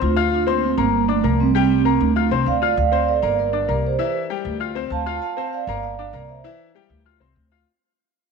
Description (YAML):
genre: latin, salsa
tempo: 196 BPM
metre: 4/4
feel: straight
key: D minor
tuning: A4 = 442 Hz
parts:
  - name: vibraphone with soft mallets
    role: melody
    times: 0.0-6.6 s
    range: F3 to A5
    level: -21 LUFS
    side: right 10 dB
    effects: none
  - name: bright upright piano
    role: accompaniment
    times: 0.0-7.6 s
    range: E3 to F6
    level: -24 LUFS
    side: left 14 dB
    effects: none
  - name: upright bass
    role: bass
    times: 0.0-7.6 s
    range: G1 to D2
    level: -24 LUFS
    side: left 1 dB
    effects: none
room: moderate plate reverb, RT60 2.8 s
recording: 1960s-style stereo with parts hard left and right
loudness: -18 LUFS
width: side -5 dB against mid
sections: 0.0-2.8 A section; 2.8-7.7 B section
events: fade-out 2.8-7.7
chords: 0.0 Dm7; 0.9 Gm9; 1.5 C5; 2.2 Dm7; 4.0 D9sus4; 4.6 Dm7; 5.8 Gm7; 6.4 C; 7.0 Dm7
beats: 0.02 | 0.32 0.63 0.94 1.24 | 1.55 1.85 2.16 2.46 | 2.77 3.08 3.38 3.69 | 3.99 4.30 4.61 4.91 | 5.22 5.52 5.83 6.13 | 6.44 6.75 7.05 7.36